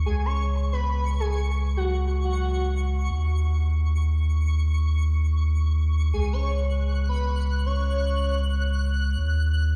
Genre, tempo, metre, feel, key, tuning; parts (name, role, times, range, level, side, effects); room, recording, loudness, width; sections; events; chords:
drum and bass; 158 BPM; 4/4; straight; A4 = 439 Hz
saturated sub bass; bass; 0.0-9.8 s; C#2 to D#2; -25 LUFS; equal
twinkling granular texture; texture; 0.0-9.8 s; C#6 to F#6; -39 LUFS; equal; built-in reverb
airy dreamy lead; melody; 0.1-2.8, 6.1-8.4 s; F#4 to C#5; -34 LUFS; equal; chorus, dub echo
little or no reverb; played on a big sound system in a bare room, stone room reverb, vinyl crackle; -24 LUFS; mono
0.0-9.8 A section
0.1 C#7sus4; 3.1 C#sus2/D#; 6.1 C#7sus4; 9.2 D#m